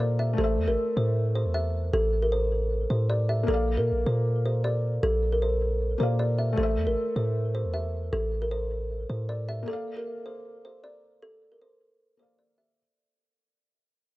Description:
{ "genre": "hip hop, trap", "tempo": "155 BPM", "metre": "4/4", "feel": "half-time", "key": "A phrygian", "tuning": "A4 = 440 Hz", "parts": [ { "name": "kalimba", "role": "melody", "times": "0.0-12.7 s", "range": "A4 to E5", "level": "-29 LUFS", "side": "right 1 dB", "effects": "low-pass filter, tape echo" }, { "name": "felt-muted upright piano", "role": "accompaniment", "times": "0.0-12.8 s", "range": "A3 to F5", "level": "-34 LUFS", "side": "left 3 dB", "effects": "low-pass filter" }, { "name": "warm 808-style bass", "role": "bass", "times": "0.0-9.7 s", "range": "A1 to Bb2", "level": "-27 LUFS", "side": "equal", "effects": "none" } ], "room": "little or no reverb", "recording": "none", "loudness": "-24 LUFS", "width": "side -18 dB against mid", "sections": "0.0-6.6 A section; 6.6-12.8 B section", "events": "fade-out 6.6-12.8", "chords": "0.4 Am; 3.5 Bb; 6.6 Am; 9.7 Bb" }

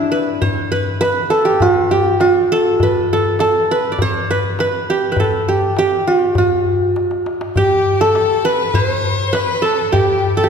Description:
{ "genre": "Arabic maqam ensemble", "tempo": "101 BPM", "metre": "4/4", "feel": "straight", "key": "unclear", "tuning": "A4 = 439 Hz", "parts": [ { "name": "qanun", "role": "melody", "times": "0.0-10.5 s", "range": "D4 to D5", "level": "-14 LUFS", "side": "right 1 dB", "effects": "none" }, { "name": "darbuka", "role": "percussion", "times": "0.3-10.1 s", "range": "none", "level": "-21 LUFS", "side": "left 2 dB", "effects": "none" }, { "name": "clear violin", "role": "second line", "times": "7.6-10.5 s", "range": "G4 to C5+49c", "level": "-18 LUFS", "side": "left 4 dB", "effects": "none" } ], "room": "wet church reverb, RT60 2.7 s", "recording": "recorded in a church or concert hall", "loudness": "-13 LUFS", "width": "side -6 dB against mid", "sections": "0.0-10.5 A section", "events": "drum fill 7.0-7.6", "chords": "none" }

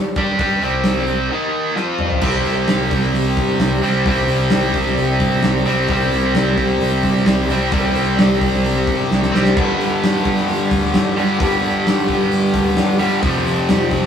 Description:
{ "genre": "hard rock", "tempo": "131 BPM", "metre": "4/4", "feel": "straight", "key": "unclear", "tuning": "A4 = 439 Hz", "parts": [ { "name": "distorted electric guitar", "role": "riff", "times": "0.2-14.1 s", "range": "F2 to G4", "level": "-17 LUFS", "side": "equal", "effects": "overdrive" }, { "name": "fuzz picked electric bass", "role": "bass", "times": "0.2-14.1 s", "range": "F1 to G2", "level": "-24 LUFS", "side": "equal", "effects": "overdrive" }, { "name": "gated 80s drum kit", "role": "drums", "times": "0.2-14.0 s", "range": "crash cymbal, hi-hat, kick drum, snare drum, toms", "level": "-20 LUFS", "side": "equal", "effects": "none" }, { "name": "analog string pad", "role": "sustained chords", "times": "2.6-14.1 s", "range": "F3 to D5", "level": "-26 LUFS", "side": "left 2 dB", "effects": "ensemble chorus" } ], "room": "wet studio reverb, RT60 0.5 s", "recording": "rough rehearsal-room recording", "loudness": "-14 LUFS", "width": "side -8 dB against mid", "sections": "0.0-2.2 A section; 2.2-14.1 B section", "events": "break 1.3-2.2; drum fill 1.8-2.2, 9.1-9.6", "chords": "0.0 C5; 1.3 Eb5; 1.8 F5; 2.2 C5; 9.6 G5; 13.2 F5" }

